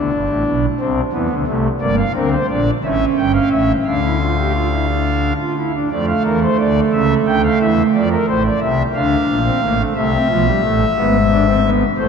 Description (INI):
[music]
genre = classical, baroque-style 3-part fugue for pipe organ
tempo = 59 BPM (dotted quarters)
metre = 6/8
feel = straight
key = D minor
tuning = A4 = 436 Hz
[part]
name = pipe organ, foundations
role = solo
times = 0.0-12.1 s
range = G1 to G5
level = -14 LUFS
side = equal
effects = none
[sound]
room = wet cathedral reverb, RT60 6.2 s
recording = nothing above 10.8 kHz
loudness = -14 LUFS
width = side -6 dB against mid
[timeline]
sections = 0.0-5.9 A section; 5.9-12.1 B section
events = none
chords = 0.0 G; 0.8 Cmaj13; 1.8 Gm; 2.8 A7; 3.8 Dm; 6.9 A7/C#; 7.9 Dm; 10.0 Am; 11.0 E7/G#